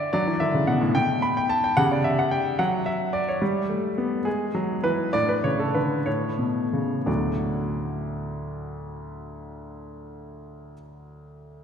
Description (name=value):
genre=classical-period piano sonatina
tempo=57-74 BPM (dotted quarters)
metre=6/8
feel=rubato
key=D major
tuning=A4 = 440 Hz
part: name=clear grand piano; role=solo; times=0.0-11.6 s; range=D2 to B5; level=-23 LUFS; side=equal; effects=none
room=wet church reverb, RT60 3.1 s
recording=recorded in a church or concert hall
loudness=-22 LUFS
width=side -7 dB against mid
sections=0.0-7.1 A section; 7.1-11.1 B section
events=slowing down 2.6-7.1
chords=0.0 D; 0.9 N.C.; 1.8 C#dim; 2.6 N.C.; 3.4 G; 4.3 E; 5.1 D5/A; 6.1 A; 7.1 D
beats=| 0.13 0.95 | 1.77 2.59 | 3.41 4.26 | 5.14 6.07 | 7.08 8.07 | 9.06 10.06